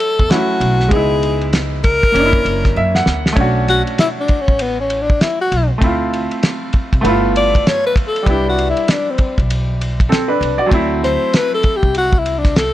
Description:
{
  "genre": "hip hop, jazz-hop",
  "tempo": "98 BPM",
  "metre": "4/4",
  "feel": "swing 63% on 16ths",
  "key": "B minor",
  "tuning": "A4 = 440 Hz",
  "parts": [
    { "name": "breathy alto saxophone", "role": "melody", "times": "0.0-12.7 s", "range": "B3 to D5", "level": "-16 LUFS", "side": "left 2 dB", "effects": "none" },
    { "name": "clear upright piano", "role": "accompaniment", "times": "0.0-12.7 s", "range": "E3 to F#5", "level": "-19 LUFS", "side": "right 1 dB", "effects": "none" },
    { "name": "cloth-damped thuddy drum kit", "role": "drums", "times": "0.0-12.7 s", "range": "hi-hat, kick drum, ride cymbal, snare drum", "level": "-17 LUFS", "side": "equal", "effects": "vintage 12-bit sampler grit" },
    { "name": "upright bass", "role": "bass", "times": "0.2-12.7 s", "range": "F#1 to F#2", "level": "-20 LUFS", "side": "equal", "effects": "none" }
  ],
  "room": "light reverb, small room ambience",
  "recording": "none",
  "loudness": "-13 LUFS",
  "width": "side -14 dB against mid",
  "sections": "0.0-3.4 A section; 3.4-12.7 B section",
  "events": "upright piano fill 2.4-3.4; drum fill 2.8-3.4; alto saxophone solo 3.4-12.7",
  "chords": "0.0 Dmaj9 (rootless); 0.9 C#m7; 2.1 F#7b13; 3.4 Bm9; 5.8 Dm7; 7.0 G13; 8.3 Cmaj9; 10.7 D9"
}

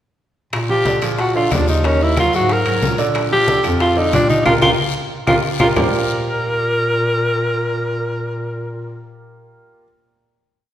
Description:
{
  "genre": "Afro-Cuban jazz",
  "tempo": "184 BPM",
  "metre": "4/4",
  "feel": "straight",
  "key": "Bb major",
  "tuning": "A4 = 440 Hz",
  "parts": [
    { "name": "dark bass clarinet", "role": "bass", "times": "0.5-9.1 s", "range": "Eb2 to Bb2", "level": "-22 LUFS", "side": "equal", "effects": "none" },
    { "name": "bongos", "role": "percussion", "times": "0.5-5.8 s", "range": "none", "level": "-28 LUFS", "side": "left 4 dB", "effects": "none" },
    { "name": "claves", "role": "percussion", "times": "0.5-5.8 s", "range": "none", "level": "-30 LUFS", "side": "left 3 dB", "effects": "none" },
    { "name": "congas", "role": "percussion", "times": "0.5-5.8 s", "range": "none", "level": "-25 LUFS", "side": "left 2 dB", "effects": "none" },
    { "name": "guiro", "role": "percussion", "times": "0.5-5.8 s", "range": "none", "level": "-31 LUFS", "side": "left 6 dB", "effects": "none" },
    { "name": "timbales", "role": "percussion", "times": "0.5-5.8 s", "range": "none", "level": "-28 LUFS", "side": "right 3 dB", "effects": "none" },
    { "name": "clear alto saxophone", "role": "melody", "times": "0.7-9.1 s", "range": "Db4 to Bb4", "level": "-18 LUFS", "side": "equal", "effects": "none" },
    { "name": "warm grand piano", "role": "accompaniment", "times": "0.7-9.8 s", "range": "D3 to Eb5", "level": "-23 LUFS", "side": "right 2 dB", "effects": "none" }
  ],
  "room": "wet scoring stage reverb, RT60 1.6 s",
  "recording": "recorded in a church or concert hall",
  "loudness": "-14 LUFS",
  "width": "side -11 dB against mid",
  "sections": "0.5-5.8 A section; 5.8-8.4 final chord",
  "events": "drum fill 4.5-5.8; band accent 4.5-5.8",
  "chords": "0.5 Bb6; 1.2 Bb7; 1.8 Ebm; 2.5 Absus2; 3.2 Bb6; 5.8 Bb69"
}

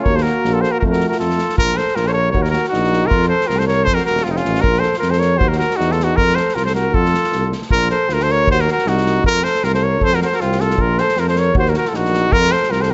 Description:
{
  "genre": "balkan folk, Balkan brass band",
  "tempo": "157 BPM",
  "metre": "2/4",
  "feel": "swing 56% on 16ths",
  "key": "F phrygian dominant",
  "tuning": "A4 = 440 Hz",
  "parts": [
    { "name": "clear trumpet", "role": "melody", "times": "0.0-12.9 s", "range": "Eb4 to Db5", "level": "-20 LUFS", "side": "equal", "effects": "none" },
    { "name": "warm flugelhorn", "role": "second line", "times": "0.0-12.9 s", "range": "C4 to Bb4", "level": "-25 LUFS", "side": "equal", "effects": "none" },
    { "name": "mellow euphonium", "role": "accompaniment", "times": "0.0-1.4 s", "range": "F4 to Gb4", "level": "-28 LUFS", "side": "equal", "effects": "none" },
    { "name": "bright trombone", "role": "accompaniment", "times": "0.1-1.4 s", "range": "A3 to Bb3", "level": "-26 LUFS", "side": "equal", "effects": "none" },
    { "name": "warm tuba", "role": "bass", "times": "0.1-12.9 s", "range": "Eb1 to F2", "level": "-22 LUFS", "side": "equal", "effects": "none" },
    { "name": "unplugged drum kit", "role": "percussion", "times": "0.1-12.9 s", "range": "kick drum, snare drum", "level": "-25 LUFS", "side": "equal", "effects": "none" }
  ],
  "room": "light reverb",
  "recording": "nothing above 7.7 kHz",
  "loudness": "-16 LUFS",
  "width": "mono",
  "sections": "0.0-1.6 A section; 1.6-7.7 B section; 7.7-12.9 B section",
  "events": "none",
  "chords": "0.1 Ebm; 0.8 F; 1.6 Bbmmaj7; 2.3 Ebm; 3.1 F; 4.6 Bb5; 5.4 Ebm; 6.2 F; 7.7 Bbmaj9; 8.5 Ebm; 9.2 F5; 10.8 Bb5; 11.5 Ebm; 12.3 F"
}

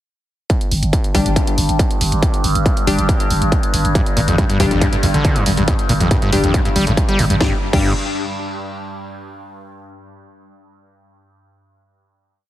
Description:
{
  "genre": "driving peak-time techno",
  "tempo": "139 BPM",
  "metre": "4/4",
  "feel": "straight",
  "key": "unclear",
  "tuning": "A4 = 440 Hz",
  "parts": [
    { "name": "overtone-sweeping drone", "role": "drone", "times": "0.8-7.4 s", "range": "G2", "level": "-24 LUFS", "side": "equal", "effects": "chorus, built-in reverb, phaser, sidechain pumping" },
    { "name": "electronic kick drum", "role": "drums", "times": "0.5-7.8 s", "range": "none", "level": "-17 LUFS", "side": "equal", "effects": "distortion, overdrive, studio ambience" },
    { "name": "techno drum kit", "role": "drums", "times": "0.5-7.8 s", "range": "crash cymbal, hi-hat, snare drum", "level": "-25 LUFS", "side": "right 1 dB", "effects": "overdrive, studio ambience" },
    { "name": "growling 808-style bass", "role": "bass", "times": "0.7-7.9 s", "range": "G1", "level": "-20 LUFS", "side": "equal", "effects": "tube saturation, sidechain pumping, low-pass filter" },
    { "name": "wavetable chord stab", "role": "stabs", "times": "1.1-7.9 s", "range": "G3 to G4", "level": "-22 LUFS", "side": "left 3 dB", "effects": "sidechain pumping, ping-pong delay" },
    { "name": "screaming distorted acid line", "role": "riff", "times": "4.0-7.9 s", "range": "F2 to G3", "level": "-19 LUFS", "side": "equal", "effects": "distortion, chorus, vintage 12-bit sampler grit, sidechain pumping, ping-pong delay" }
  ],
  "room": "light reverb",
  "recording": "heavily compressed radio sound",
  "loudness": "-14 LUFS",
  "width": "side -13 dB against mid",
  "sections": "0.5-7.4 groove; 7.4-9.1 final chord",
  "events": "none",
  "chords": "0.5 G5"
}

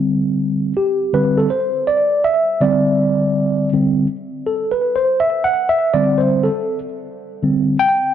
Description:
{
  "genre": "hip hop",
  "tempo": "81 BPM",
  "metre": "4/4",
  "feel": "swing 65% on 16ths",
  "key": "unclear",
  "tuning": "A4 = 439 Hz",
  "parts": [
    { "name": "mellow tine electric piano", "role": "solo", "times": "0.0-8.1 s", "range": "D3 to G5", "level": "-15 LUFS", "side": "equal", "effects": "medium stereo tremolo, slapback echo" }
  ],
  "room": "moderate plate reverb, RT60 3.5 s",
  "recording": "dark, warm production",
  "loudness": "-15 LUFS",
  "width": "side -9 dB against mid",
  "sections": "0.0-8.1 A section",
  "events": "tine electric piano solo 0.0-8.1",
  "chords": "0.0 D7sus4"
}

